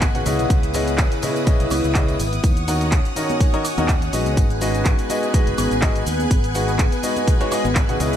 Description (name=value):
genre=piano house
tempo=124 BPM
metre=4/4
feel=swing 55% on 16ths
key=G# minor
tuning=A4 = 439 Hz
part: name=string machine, violins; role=sustained chords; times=0.0-8.2 s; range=E4 to F#6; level=-27 LUFS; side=equal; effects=ensemble chorus, sidechain pumping
part: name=fingered electric bass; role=bass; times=0.0-8.2 s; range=F#1 to D#2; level=-24 LUFS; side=equal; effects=sidechain pumping
part: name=electronic kick drum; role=drums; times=0.0-7.9 s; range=none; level=-18 LUFS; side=equal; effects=none
part: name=punchy analog drum machine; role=drums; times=0.0-8.2 s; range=handclaps, hi-hat, shaker, woodblock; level=-27 LUFS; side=right 1 dB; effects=none
part: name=tambourine and congas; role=percussion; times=0.0-8.2 s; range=none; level=-34 LUFS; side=left 5 dB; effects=none
part: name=warbly tape-like pad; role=texture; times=0.0-8.2 s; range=B3 to D#6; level=-28 LUFS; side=equal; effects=chorus, built-in reverb, sidechain pumping
part: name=warm grand piano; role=riff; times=0.1-8.2 s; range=C#3 to F#5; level=-24 LUFS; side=left 1 dB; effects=sidechain pumping, digital delay
room=light reverb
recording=none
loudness=-17 LUFS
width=side -10 dB against mid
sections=0.0-8.2 A section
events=none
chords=0.3 C#m9; 2.4 D#m7; 4.4 G#m7